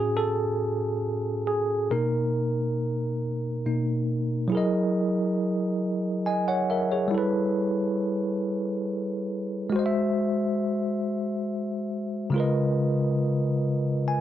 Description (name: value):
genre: R&B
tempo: 46 BPM (dotted quarters)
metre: 6/8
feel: straight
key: unclear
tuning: A4 = 439 Hz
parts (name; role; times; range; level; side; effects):
- bell-like tine electric piano; solo; 0.0-14.2 s; A2 to G#5; -24 LUFS; equal; fast stereo tremolo
room: light reverb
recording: dark, warm production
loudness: -24 LUFS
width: side -11 dB against mid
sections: 0.0-4.5 A section; 4.5-14.2 B section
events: tine electric piano solo 0.0-4.5; tine electric piano fill 13.6-14.2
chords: 0.0 Amaj7; 1.9 Bmaj7; 4.5 F#13; 7.1 G69; 9.7 G#7b13; 12.3 C#13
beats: 0.60 | 1.91 3.21 | 4.52 5.82 | 7.12 8.43 | 9.73 11.04 | 12.34 13.65